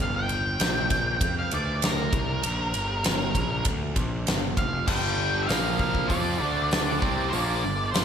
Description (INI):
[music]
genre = blues rock power trio and southern rock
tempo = 98 BPM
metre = 4/4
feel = straight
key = G minor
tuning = A4 = 439 Hz
[part]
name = octave-fuzz lead guitar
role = melody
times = 0.0-8.0 s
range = Bb4 to G5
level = -28 LUFS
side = right 1 dB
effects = distortion
[part]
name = fuzz picked electric bass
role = bass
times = 0.0-8.0 s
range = F1 to F2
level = -30 LUFS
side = equal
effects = overdrive
[part]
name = huge arena drum kit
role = drums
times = 0.3-8.0 s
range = crash cymbal, hi-hat, kick drum, ride cymbal, snare drum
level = -27 LUFS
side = equal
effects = none
[part]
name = biting overdriven guitar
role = riff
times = 4.9-8.0 s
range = G2 to F4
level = -28 LUFS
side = equal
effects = slapback echo
[sound]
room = moderate lush hall reverb, RT60 2.2 s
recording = big arena sound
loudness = -23 LUFS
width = side -8 dB against mid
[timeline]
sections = 0.0-4.9 A section; 4.9-8.0 B section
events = lead electric guitar solo 0.0-4.9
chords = 0.0 N.C.; 0.6 Gm/Bb; 1.2 Fsus2; 1.5 Bb/D; 2.1 Gm; 4.9 G5; 5.5 Bb5; 6.1 Dm7/F; 6.4 D5; 7.0 Gm